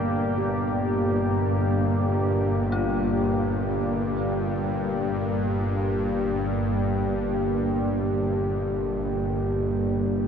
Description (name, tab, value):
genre	dark ambient drone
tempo	free time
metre	none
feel	none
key	G minor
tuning	A4 = 438 Hz
part	deep dark ambient pad	sustained chords	0.0-10.3 s	Bb3 to D5	-26 LUFS	equal	chorus, built-in reverb
part	bowed-like drone	drone	0.0-10.3 s	G1 to G2	-26 LUFS	left 1 dB	built-in reverb
part	bronze singing bowl	texture	0.4-10.3 s	G4	-37 LUFS	right 4 dB	none
part	dark detuned synth bell	arpeggios	2.7-10.3 s	F4	-38 LUFS	left 1 dB	chorus, phaser, diffuse ambient delay
room	wet huge ambient reverb, RT60 7.4 s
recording	in a vast, echoing space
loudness	-23 LUFS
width	side -7 dB against mid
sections	0.0-10.3 A section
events	none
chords	0.0 Gm